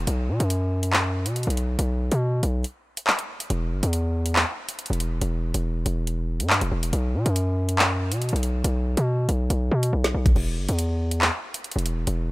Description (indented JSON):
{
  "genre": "hip hop, drill",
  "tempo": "140 BPM",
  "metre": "4/4",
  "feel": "half-time",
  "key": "unclear",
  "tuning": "A4 = 440 Hz",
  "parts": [
    { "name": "distorted 808-style bass", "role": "bass", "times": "0.0-12.3 s", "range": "E1 to B2", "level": "-23 LUFS", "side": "equal", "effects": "distortion" },
    { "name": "drill drum kit", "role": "drums", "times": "0.1-12.2 s", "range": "crash cymbal, handclaps, hi-hat, kick drum, snare drum", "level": "-24 LUFS", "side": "equal", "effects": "none" }
  ],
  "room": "digital ambience",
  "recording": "faint mains hum",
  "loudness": "-22 LUFS",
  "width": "side -20 dB against mid",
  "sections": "0.0-3.5 A section; 3.5-12.3 B section",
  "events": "break 2.6-3.5; drum fill 9.5-10.4",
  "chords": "none"
}